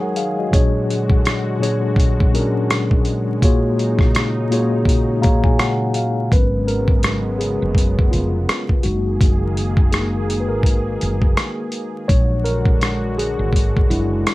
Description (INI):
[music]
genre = lo-fi hip hop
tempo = 83 BPM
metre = 4/4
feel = swing 58% on 16ths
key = G# dorian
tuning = A4 = 441 Hz
[part]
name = mellow tine electric piano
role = accompaniment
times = 0.0-14.3 s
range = A#2 to A#5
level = -20 LUFS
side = left 1 dB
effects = medium stereo tremolo, low-pass filter
[part]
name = warm analog pad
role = sustained chords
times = 0.0-14.3 s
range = C#3 to G#4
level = -27 LUFS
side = right 1 dB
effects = chorus, low-pass filter
[part]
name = dusty soul sampler-style drum kit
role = drums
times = 0.2-14.3 s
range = hi-hat, kick drum, rim click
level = -16 LUFS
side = equal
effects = none
[part]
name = woody fretless electric bass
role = bass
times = 6.3-14.2 s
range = E#1 to A#1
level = -22 LUFS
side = equal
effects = none
[sound]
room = moderate small room reverb, RT60 0.5 s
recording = vinyl crackle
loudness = -15 LUFS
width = side -18 dB against mid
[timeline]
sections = 0.0-6.3 A section; 6.3-14.3 B section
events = tine electric piano solo 6.3-14.3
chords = 0.0 F#69; 0.5 A#7alt; 3.4 D#m11/A#; 6.3 G#m11; 8.8 F#69; 12.1 A#aug7